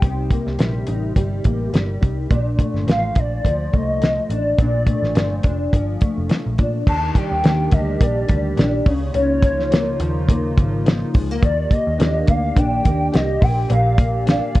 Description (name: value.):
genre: indie pop, bedroom pop.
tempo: 105 BPM.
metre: 4/4.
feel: swing 55% on 16ths.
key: Eb lydian.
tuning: A4 = 440 Hz.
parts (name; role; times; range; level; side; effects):
hollow clarinet-like synth lead; melody; 0.0-14.6 s; Db5 to A5; -23 LUFS; left 1 dB; ensemble chorus, tape echo.
nylon-string guitar; accompaniment; 0.0-14.6 s; Bb2 to G4; -23 LUFS; left 1 dB; analog chorus, warbly pitch drift.
vintage muted picked electric bass; bass; 0.0-14.6 s; F1 to Bb2; -23 LUFS; equal; transformer saturation.
damped 70s drum kit; drums; 0.0-14.6 s; crash cymbal, hi-hat, kick drum, snare drum; -17 LUFS; equal; none.
hollow soft pad; sustained chords; 6.9-14.6 s; Db3 to D5; -28 LUFS; right 1 dB; chorus.
room: moderate small room reverb, RT60 0.5 s.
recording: worn, warbling old tape, cassette tape, warbly pitch drift.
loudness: -16 LUFS.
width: side -17 dB against mid.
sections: 0.0-6.9 A section; 6.9-14.6 B section.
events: none.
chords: 0.0 Cm7; 2.3 Bbmaj7; 6.9 Ebmaj7; 8.9 Db69; 11.4 Ebmaj7; 13.4 Bb6.